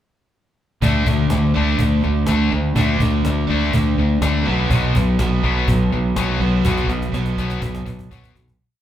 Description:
classic rock; 124 BPM; 4/4; straight; A4 = 440 Hz
biting overdriven guitar; riff; 0.8-8.3 s; B2 to D4; -24 LUFS; right 6 dB
distorted electric guitar; riff; 0.8-8.6 s; B2 to D4; -21 LUFS; left 3 dB; overdrive
growling fingered electric bass; bass; 0.8-8.6 s; B1 to D2; -20 LUFS; equal; overdrive
cajon; drums; 0.8-8.6 s; -24 LUFS; equal
wet large studio reverb, RT60 1.1 s; band playing live in one room; -16 LUFS; side -11 dB against mid
0.8-8.6 pre-chorus
fade-out 6.6-8.6; drum fill 6.6-8.6
0.8 D5; 4.5 B5

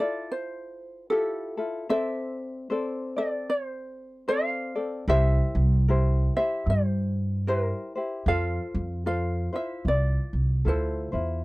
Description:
Hawaiian; 76 BPM; 4/4; swing 60% on 8ths; F major; A4 = 439 Hz
ukulele; melody; 0.0-11.4 s; A4 to F5; -29 LUFS; right 1 dB
ukulele; accompaniment; 0.0-11.4 s; C4 to D5; -31 LUFS; left 2 dB
upright bass; bass; 5.1-11.4 s; C2 to G2; -24 LUFS; equal
little or no reverb; dry, close 1970s-style studio recording; -24 LUFS; side -20 dB against mid
0.0-11.4 A section
0.0 Fmaj9; 1.9 C69; 5.1 C7; 8.3 Fmaj7

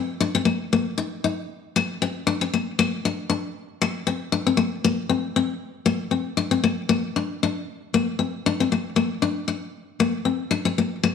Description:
highlife; 117 BPM; 4/4; swing 53% on 16ths; Bb major; A4 = 440 Hz
picked steel-string acoustic guitar; solo; 0.0-11.1 s; Bb3 to Eb4; -21 LUFS; left 5 dB
wet echo chamber reverb, RT60 1.4 s, studio reverb; -22 LUFS; side -6 dB against mid
0.0-6.9 A section; 6.9-11.1 B section

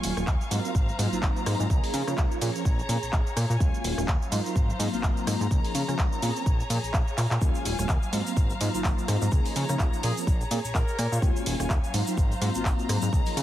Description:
filtered disco house; 126 BPM; 4/4; swing 56% on 16ths; A4 = 440 Hz
mellow synth brass; accompaniment; 0.0-13.4 s; F3 to Bb4; -32 LUFS; equal; chorus, phaser, sidechain pumping
dark chamber string section; sustained chords; 0.0-13.4 s; Gb3 to Db6; -35 LUFS; left 1 dB; sidechain pumping
fat analog bass; bass; 0.0-13.4 s; Eb1 to Db3; -28 LUFS; equal; sidechain pumping
house drum kit; drums; 0.0-13.4 s; handclaps, hi-hat, rim click, shaker; -33 LUFS; equal; sidechain pumping on perc, sidechain pumping on hats
electronic kick drum; drums; 0.3-13.2 s; -25 LUFS; equal
tube shaker; percussion; 7.4-13.3 s; -41 LUFS; left 1 dB; sidechain pumping on perc
bright horn section; melody; 10.0-11.2 s; Ab4 to Bb4; -37 LUFS; equal; sidechain pumping, ping-pong delay
light reverb; heavily compressed radio sound, multiband compression; -24 LUFS; side -13 dB against mid
0.0-13.4 A section
drum fill 7.2
0.0 Ebm11; 0.5 Ab13; 1.7 Db6; 2.4 Bbm7; 3.6 Ebm11; 4.3 Ab13; 5.5 Db6; 6.2 Bbm7; 7.4 Ebm11; 8.1 Ab13; 9.3 Db6; 10.0 Bbm7; 11.2 Ebm11; 11.9 Ab13

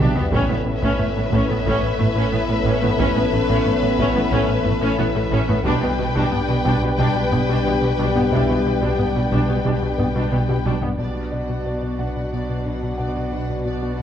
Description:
cinematic, hybrid orchestral and electronic film score; 90 BPM; 4/4; straight; B minor; A4 = 443 Hz
warm symphonic violin section; melody; 0.0-10.7 s; E5 to G5; -28 LUFS; left 5 dB
warm symphonic violin section; second line; 0.0-14.0 s; G4 to F#5; -29 LUFS; left 4 dB
rich symphonic viola section; accompaniment; 0.0-14.0 s; G3 to F#4; -27 LUFS; right 1 dB
dark trombone section; sustained chords; 0.0-10.6 s; E3 to B3; -29 LUFS; right 3 dB
hollow soft pad; sustained chords; 0.0-14.0 s; B3 to D5; -29 LUFS; equal; chorus
mellow French horn section; sustained chords; 0.0-14.0 s; F#3 to A4; -28 LUFS; left 5 dB
soft round pluck; arpeggios; 0.0-14.0 s; G3 to B4; -31 LUFS; left 3 dB
rubbery square bass; riff; 0.0-14.0 s; A2 to B3; -26 LUFS; left 1 dB
punchy sub bass; bass; 0.0-14.0 s; A1 to B1; -29 LUFS; equal
warm symphonic cello section; bass; 0.0-14.0 s; A2 to B2; -28 LUFS; right 3 dB
warm symphonic double bass section; bass; 0.0-10.7 s; A1 to B1; -27 LUFS; right 4 dB
taiko ensemble; drums; 0.0-12.3 s; -27 LUFS; equal
felt-muted upright piano; texture; 0.0-14.0 s; E4 to G5; -35 LUFS; equal
wet concert hall reverb, RT60 2.1 s; worn, warbling old tape, cassette tape, warbly pitch drift; -18 LUFS; side -9 dB against mid
0.0-11.0 A section; 11.0-14.0 B section
drum fill 0.0-0.3
0.3 Aadd9; 5.7 G/B; 11.0 Bm

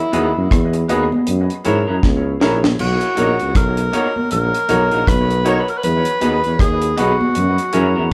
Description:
lovers rock reggae; 79 BPM; 4/4; swing 59% on 16ths; B major; A4 = 439 Hz
warm tenor saxophone; melody; 0.0-8.1 s; E4 to C#5; -22 LUFS; equal
clear baby grand piano; accompaniment; 0.1-7.9 s; C#4 to D#5; -25 LUFS; equal; dub echo
electric guitar through a small old amp; stabs; 0.1-8.0 s; F#3 to B4; -24 LUFS; equal
warm tuba; bass; 0.1-8.1 s; A#1 to G#2; -22 LUFS; equal
deep reggae drum kit; drums; 0.1-7.9 s; crash cymbal, hi-hat, kick drum, rim click, snare drum; -21 LUFS; equal
congas; percussion; 0.1-8.0 s; -28 LUFS; equal
moderate studio ambience, RT60 0.5 s; band playing live in one room; -17 LUFS; mono
0.0-8.1 A section
drum fill 2.0-2.8
0.0 Emaj7; 1.3 F#7; 2.8 Bmaj7; 5.8 Emaj7; 7.4 F#7

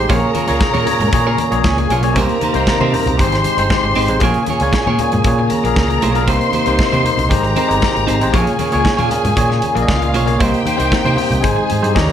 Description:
disco; 116 BPM; 4/4; straight; Bb dorian; A4 = 440 Hz
warm studio string section; second line; 0.0-12.1 s; F4 to C6; -20 LUFS; left 2 dB
bell-like tine electric piano; accompaniment; 0.0-12.1 s; Bb2 to Eb5; -19 LUFS; left 2 dB; medium stereo tremolo
percussive tonewheel organ; sustained chords; 0.0-12.1 s; C3 to Ab4; -24 LUFS; right 3 dB; overdrive
overdriven fingered electric bass; bass; 0.0-12.1 s; G1 to C3; -19 LUFS; equal
clean electric guitar; accompaniment; 0.1-12.1 s; Bb3 to Db5; -22 LUFS; right 4 dB
modern studio drum kit; drums; 0.1-12.1 s; hi-hat, kick drum, snare drum; -20 LUFS; equal
congas; percussion; 0.2-12.1 s; -26 LUFS; left 4 dB
moderate large studio reverb, RT60 1.1 s; -13 LUFS; side -9 dB against mid
0.0-12.1 A section
0.1 Bbm7; 2.2 Cm7; 3.2 Abmaj7; 4.2 Bbm7; 6.3 Cm7; 7.3 Abmaj7; 8.3 Bbm7; 10.4 Cm7; 11.4 Abmaj7

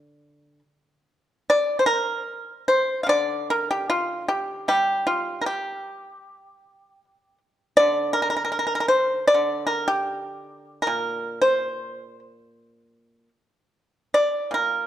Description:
chinese traditional, Chinese solo plucked strings; 76 BPM; 4/4; uneven beats, rubato; D jue mode; A4 = 442 Hz
pipa; solo; 0.0-14.9 s; Bb2 to F5; -20 LUFS; equal
moderate recital hall reverb, RT60 1.4 s; dark, warm production; -21 LUFS; side -11 dB against mid
0.0-1.5 A section; 1.5-14.9 B section

